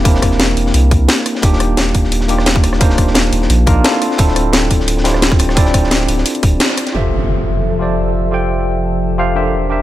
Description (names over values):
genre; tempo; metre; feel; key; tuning
liquid drum and bass; 174 BPM; 4/4; swing 53% on 16ths; F major; A4 = 440 Hz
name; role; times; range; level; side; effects
tine electric piano; accompaniment; 0.0-9.8 s; Bb3 to G5; -17 LUFS; equal; medium stereo tremolo, tape echo
saturated sub bass; bass; 0.0-9.8 s; D1 to C2; -16 LUFS; equal; none
crunchy breakbeat drum kit; drums; 0.1-6.9 s; hi-hat, snare drum; -23 LUFS; equal; high-pass filter on hats, high-pass filter on snare, high-pass filter on room
electronic kick drum; drums; 0.1-6.5 s; none; -13 LUFS; equal; none
garage drum kit; drums; 0.1-6.9 s; hi-hat, rim click, snare drum; -16 LUFS; equal; none
airy breathy pad; sustained chords; 6.9-9.8 s; E3 to E5; -20 LUFS; equal; chorus, phaser
impact; sound effects; 6.9-8.3 s; none; -22 LUFS; equal; none
room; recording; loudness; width
light reverb; none; -11 LUFS; side -14 dB against mid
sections
0.0-6.9 A section; 6.9-9.8 B section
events
drop 0.0-6.9; kick drops out 6.6-6.9; band accent 6.6; impact 6.9-8.3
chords
0.0 C7/E; 1.4 Ebmaj9; 4.0 Dm9; 6.9 Fmaj7